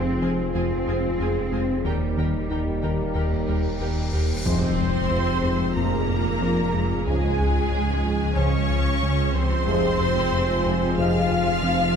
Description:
cinematic, hybrid orchestral and electronic film score; 92 BPM; 4/4; straight; F minor; A4 = 440 Hz
dark French horn section; sustained chords; 0.0-11.2 s; Ab3 to Bb4; -32 LUFS; left 4 dB
dark analog pad; sustained chords; 0.0-12.0 s; F3 to C5; -32 LUFS; equal; chorus, phaser
harp-like synth pluck; arpeggios; 0.0-11.8 s; Db3 to F4; -31 LUFS; equal; chorus, tape echo
rubbery square bass; riff; 0.0-11.8 s; Db2 to F3; -27 LUFS; left 1 dB
dark tuba; bass; 0.0-12.0 s; F1 to Eb2; -31 LUFS; right 2 dB
rich symphonic cello section; bass; 0.0-12.0 s; Ab2 to C4; -32 LUFS; right 1 dB
rich symphonic double bass section; bass; 0.0-12.0 s; Db2 to F2; -31 LUFS; right 1 dB
saturated sub bass; bass; 0.0-12.0 s; Eb1 to Db2; -31 LUFS; equal
rich symphonic violin section; second line; 0.2-12.0 s; Ab4 to Ab5; -30 LUFS; left 1 dB
clear symphonic viola section; accompaniment; 0.2-12.0 s; Ab3 to Bb4; -31 LUFS; right 1 dB
cymbal swell and impact; sound effects; 3.6-7.1 s; -32 LUFS; left 1 dB
rich symphonic violin section; melody; 4.5-12.0 s; Ab5 to F6; -31 LUFS; left 1 dB
warm trombone section; sustained chords; 4.5-11.2 s; C3 to F3; -34 LUFS; right 1 dB
wet scoring stage reverb, RT60 1.7 s; heard from further back in the room; -20 LUFS; side -7 dB against mid
0.0-4.5 A section; 4.5-12.0 B section
cymbal swell 3.6-4.5; impact 4.5-7.1
0.0 Fm; 1.8 Eb; 4.5 Fm; 7.1 Db; 9.7 Fm

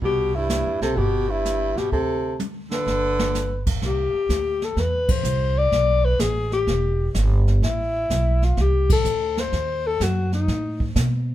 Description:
jazz, small-group swing and bop; 126 BPM; 4/4; swing 68% on 8ths; C major; A4 = 442 Hz
clear baritone saxophone; second line; 0.0-3.6 s; G2 to D3; -26 LUFS; right 6 dB
upright bass; bass; 0.0-11.3 s; E1 to B2; -23 LUFS; right 1 dB
jazz brush drum kit; drums; 0.0-11.3 s; brushed snare drum, crash cymbal, hi-hat, kick drum, ride cymbal, snare drum, toms; -27 LUFS; right 1 dB
breathy alto saxophone; melody; 0.1-10.9 s; D#4 to D5; -23 LUFS; left 4 dB
light reverb; minimal, uncompressed stereo recording; -19 LUFS; side -13 dB against mid
0.0-3.8 A section; 3.8-11.3 B section
drum fill 2.4-3.3; band accent 5.0, 8.8
0.0 Cmaj7; 1.9 D5; 2.9 G; 3.8 C; 5.7 Asus4; 6.7 Em; 7.6 Amadd9; 9.5 B7

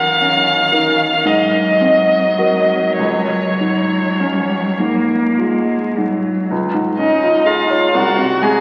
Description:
classical, slow romantic movement for piano trio; 32-43 BPM (dotted quarters); 6/8; rubato; Db major; A4 = 445 Hz
rich violin; melody; 0.0-8.6 s; Db5 to Ab5; -18 LUFS; equal
rich cello; second line; 0.0-8.6 s; Eb3 to Ab4; -21 LUFS; equal
clear grand piano; accompaniment; 0.0-8.6 s; C2 to Db5; -21 LUFS; equal
wet church reverb, RT60 3.2 s; very old 78 rpm record, vinyl crackle; -15 LUFS; mono
0.0-6.5 A section; 6.5-8.6 B section
0.0 Ebm7/Gb; 1.3 Ab9; 3.0 Db; 8.0 Ab/C

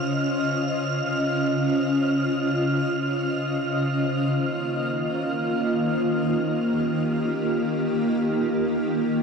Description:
ambient; free time; A4 = 441 Hz
granular cloud pad; sustained chords; 0.0-9.2 s; Db3 to Eb5; -22 LUFS; equal; built-in reverb, cassette tape
wind-like tuned noise texture; texture; 0.0-9.2 s; F6; -31 LUFS; right 2 dB; built-in reverb, cassette tape
wet lush hall reverb, RT60 2.7 s; home recording on cassette; -22 LUFS; side -5 dB against mid
0.0-9.2 A section
0.0 Dbmaj7; 3.7 Ebadd9

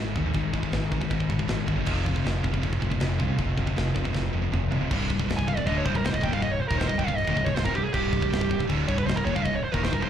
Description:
heavy metal; 158 BPM; 4/4; straight; C minor; A4 = 441 Hz
heavy high-gain guitar; riff; 0.0-10.1 s; C2 to F3; -32 LUFS; right 10 dB; distortion
overdriven electric guitar; riff; 0.0-4.9 s; F2 to Ab4; -34 LUFS; equal
sludgy distorted guitar; riff; 0.0-10.1 s; C2 to F3; -30 LUFS; left 7 dB; overdrive
modern bright fingered electric bass; bass; 0.0-10.1 s; C1 to Eb2; -29 LUFS; equal
tight metal drum kit; drums; 0.2-10.1 s; china cymbal, crash cymbal, kick drum, snare drum, toms; -30 LUFS; equal
nasal lead guitar with a parked wah; melody; 5.4-10.1 s; G4 to Ab5; -28 LUFS; right 3 dB; overdrive, slapback echo
little or no reverb; live gig heard through the venue's PA, club reverb; -23 LUFS; side -9 dB against mid
0.0-4.9 A section; 4.9-10.1 B section
drum fill 4.1-4.9; lead electric guitar solo 4.9-10.1
0.0 Ab; 1.9 Fm; 4.9 Cm

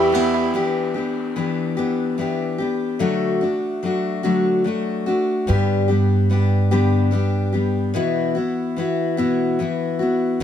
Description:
folk; 49 BPM (dotted quarters); 6/8; straight; E minor; A4 = 442 Hz
lap resonator guitar; second line; 0.0-0.5 s; G4; -25 LUFS; right 7 dB
picked steel-string acoustic guitar; accompaniment; 0.0-10.4 s; G2 to G4; -19 LUFS; left 2 dB
pedal harmonium; sustained chords; 0.0-0.5 s; G4 to B5; -25 LUFS; left 1 dB
bluegrass banjo; arpeggios; 0.0-0.6 s; E3 to E4; -24 LUFS; right 8 dB
upright bass; bass; 0.0-0.5, 5.5-7.9 s; E2 to G2; -19 LUFS; right 1 dB
moderate studio reverb, RT60 0.9 s; -18 LUFS; side -9 dB against mid
0.5-10.4 A section
break 8.0-10.4
0.0 Em; 0.5 Em7; 3.0 D; 5.5 G; 8.0 Bsus4

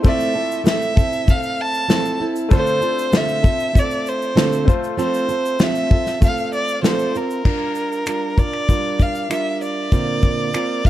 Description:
acoustic pop; 97 BPM; 4/4; straight; F major; A4 = 440 Hz
clear concert grand piano; accompaniment; 0.0-7.5 s; A3 to D5; -30 LUFS; left 6 dB
fingerpicked plugged-in steel-string acoustic guitar; accompaniment; 0.0-10.9 s; Bb2 to Bb4; -22 LUFS; right 3 dB
natural country drum kit; drums; 0.0-10.9 s; crash cymbal, finger snaps, kick drum, shaker, snare drum; -16 LUFS; left 1 dB
warm violin; melody; 0.1-10.9 s; Bb4 to A5; -22 LUFS; equal; ping-pong delay
small room ambience; dark, warm production; -16 LUFS; side -13 dB against mid
0.0-7.5 A section; 7.5-10.9 B section
0.0 Fmaj7; 2.5 Dm7; 4.7 F; 7.5 Gm7; 9.9 Bbadd9

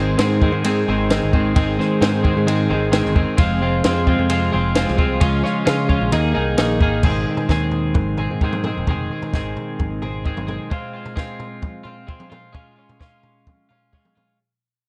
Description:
indie rock; 131 BPM; 4/4; straight; A4 = 440 Hz
twelve-string electric guitar; riff; 0.0-14.4 s; Eb3 to Ab4; -24 LUFS; equal
twelve-string electric guitar; riff; 0.0-7.0 s; F2 to Ab4; -25 LUFS; equal; ensemble chorus, tape echo
picked electric bass; bass; 0.0-10.6 s; F1 to Db3; -25 LUFS; equal
compact cocktail drum kit; drums; 0.2-14.3 s; crash cymbal, kick drum, ride cymbal, snare drum, toms; -24 LUFS; equal; vintage 12-bit sampler grit
light reverb; -19 LUFS; mono
0.0-7.0 A section; 7.0-14.4 B section
fade-out 7.0-14.4
0.0 Ab; 3.4 Fm; 5.2 Db; 6.1 Ebsus4; 7.0 Ab; 10.7 Fm; 12.6 Db

